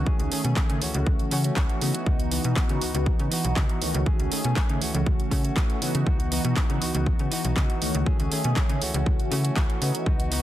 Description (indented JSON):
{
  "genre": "filtered disco house",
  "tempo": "120 BPM",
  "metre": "4/4",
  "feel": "straight",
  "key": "unclear",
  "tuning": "A4 = 441 Hz",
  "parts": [
    { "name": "mellow synth brass", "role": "accompaniment", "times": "0.0-10.4 s", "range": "D#3 to G#4", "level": "-29 LUFS", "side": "equal", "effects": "chorus, phaser, sidechain pumping, low-pass filter" },
    { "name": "direct-recorded clean electric guitar", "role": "riff", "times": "0.0-10.4 s", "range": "D#3 to G#4", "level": "-34 LUFS", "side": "equal", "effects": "sidechain pumping, low-pass filter" },
    { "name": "slap-like FM bass", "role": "bass", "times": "0.0-10.4 s", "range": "B1 to C#3", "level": "-27 LUFS", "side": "equal", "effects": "sidechain pumping, low-pass filter" },
    { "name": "electronic kick drum", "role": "drums", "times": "0.1-10.2 s", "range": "none", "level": "-24 LUFS", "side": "equal", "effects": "overdrive" },
    { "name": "house drum kit", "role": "drums", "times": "0.2-10.4 s", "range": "handclaps, hi-hat", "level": "-31 LUFS", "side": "right 2 dB", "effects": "overdrive, sidechain pumping on hats" }
  ],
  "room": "digital ambience",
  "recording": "dense, heavily limited modern master",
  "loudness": "-22 LUFS",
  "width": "side -13 dB against mid",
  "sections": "0.0-10.4 A section",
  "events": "none",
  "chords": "0.1 B13/C# (rootless); 0.8 A6/C#; 2.1 C#m11; 4.1 B13/C# (rootless); 4.8 A6/C#; 6.1 C#m11; 8.1 B13/C# (rootless); 8.8 A6/C#",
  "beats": "| 0.07 0.56 1.06 1.56 | 2.06 2.56 3.06 3.56 | 4.07 4.57 5.07 5.57 | 6.07 6.57 7.07 7.57 | 8.06 8.56 9.06 9.56 | 10.06"
}